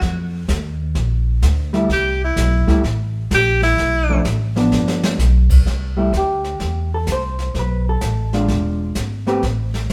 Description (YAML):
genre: jazz, small-group swing and bop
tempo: 128 BPM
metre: 4/4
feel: swing 66% on 8ths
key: C major from 5.7 s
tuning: A4 = 438 Hz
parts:
  - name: upright bass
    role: bass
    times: 0.0-9.9 s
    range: E1 to E#2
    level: -21 LUFS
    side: equal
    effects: none
  - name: jazz brush drum kit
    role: drums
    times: 0.0-9.9 s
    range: brushed snare drum, crash cymbal, hi-hat, kick drum, snare drum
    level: -25 LUFS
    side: equal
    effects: none
  - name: hollow-body jazz guitar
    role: accompaniment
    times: 1.7-9.4 s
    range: F3 to C5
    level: -23 LUFS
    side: equal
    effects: none
  - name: bright tenor saxophone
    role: melody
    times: 1.9-4.2 s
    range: E4 to G4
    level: -20 LUFS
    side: equal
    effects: none
room: moderate stone room reverb, RT60 1.0 s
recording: band playing live in one room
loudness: -18 LUFS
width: mono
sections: 0.0-5.7 A section; 5.7-9.9 B section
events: drum fill 4.7-5.2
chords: 0.0 D#sus2; 1.0 Bb; 1.9 C6; 3.8 Bm7b5; 4.7 G7; 5.7 C6; 7.5 Bm7b5; 8.5 E7b9